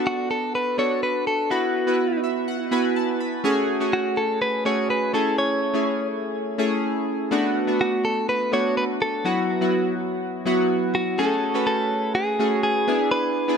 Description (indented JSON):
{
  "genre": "pop",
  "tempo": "124 BPM",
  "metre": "4/4",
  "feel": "straight",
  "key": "unclear",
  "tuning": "A4 = 440 Hz",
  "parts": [
    { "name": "chorused retro synth keys", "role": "accompaniment", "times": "0.0-13.6 s", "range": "F#3 to B5", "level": "-22 LUFS", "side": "equal", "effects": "none" },
    { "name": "direct-recorded clean electric guitar", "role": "melody", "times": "0.1-13.6 s", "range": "F#4 to C#5", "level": "-24 LUFS", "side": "equal", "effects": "tape echo" }
  ],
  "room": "moderate lush hall reverb, RT60 2.4 s",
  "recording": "none",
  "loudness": "-20 LUFS",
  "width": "side -6 dB against mid",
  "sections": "0.0-13.6 A section",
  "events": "synth keys fill 2.0-3.4",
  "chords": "0.0 Bm7; 1.5 Esus2; 3.4 F#madd9; 5.1 Amaj7; 7.3 Bm7; 9.3 Esus2; 11.2 F#madd9; 12.9 E7",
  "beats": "0.06 0.54 1.03 | 1.51 1.99 2.48 2.96 | 3.44 3.93 4.41 4.90 | 5.38 5.86 6.35 6.83 | 7.32 7.80 8.28 8.77 | 9.25 9.73 10.22 10.70 | 11.19 11.67 12.15 12.64 | 13.12"
}